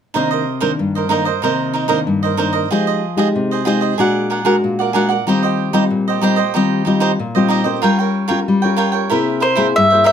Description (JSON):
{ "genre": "samba", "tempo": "94 BPM", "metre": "4/4", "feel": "straight", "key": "C minor", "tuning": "A4 = 441 Hz", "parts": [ { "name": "cavaquinho", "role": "accompaniment", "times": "0.1-10.1 s", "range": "Eb4 to G5", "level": "-18 LUFS", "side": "right 6 dB", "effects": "none" }, { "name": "nylon-string guitar", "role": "accompaniment", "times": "0.1-10.1 s", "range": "G2 to Bb4", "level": "-16 LUFS", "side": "left 3 dB", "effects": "none" }, { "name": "mandolin", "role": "melody", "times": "9.4-10.1 s", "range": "C5 to E5", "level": "-11 LUFS", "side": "equal", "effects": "none" } ], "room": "moderate studio reverb, RT60 0.6 s", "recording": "none", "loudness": "-14 LUFS", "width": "side -8 dB against mid", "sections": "0.1-10.1 A section", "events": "none", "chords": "0.1 Cm9; 2.7 Fm9; 4.0 Bbaug7; 5.3 Eb69; 7.8 Gm7b5; 9.1 C7b13" }